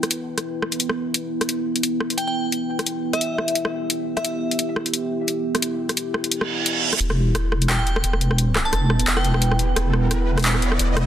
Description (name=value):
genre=half-time drum and bass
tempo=174 BPM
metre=4/4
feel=swing 56% on 16ths, half-time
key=E minor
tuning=A4 = 440 Hz
part: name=deep dark ambient pad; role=sustained chords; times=0.0-11.1 s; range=B3 to B4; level=-26 LUFS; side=right 1 dB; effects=chorus, built-in reverb
part: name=drum and bass drum kit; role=drums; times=0.0-11.0 s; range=handclaps, hi-hat, rim click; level=-23 LUFS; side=left 1 dB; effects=overdrive
part: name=glassy synth bell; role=melody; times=2.2-4.5, 7.7-9.5 s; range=E5 to A5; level=-28 LUFS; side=equal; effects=chorus, phaser, dub echo
part: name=reverse cymbal and riser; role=sound effects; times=6.4-11.1 s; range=none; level=-27 LUFS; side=right 4 dB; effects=none
part: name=deep soft wobble bass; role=bass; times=7.0-11.1 s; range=E1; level=-20 LUFS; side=equal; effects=chorus
room=moderate lush hall reverb, RT60 1.9 s, digital ambience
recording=dense, heavily limited modern master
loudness=-19 LUFS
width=side -11 dB against mid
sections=0.0-7.0 A section; 7.0-11.1 B section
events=filter sweep on ambient pad 0.0-7.0; reverse cymbal 6.4-7.0; build-up 7.0-11.1; riser 7.0-11.1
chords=0.0 E5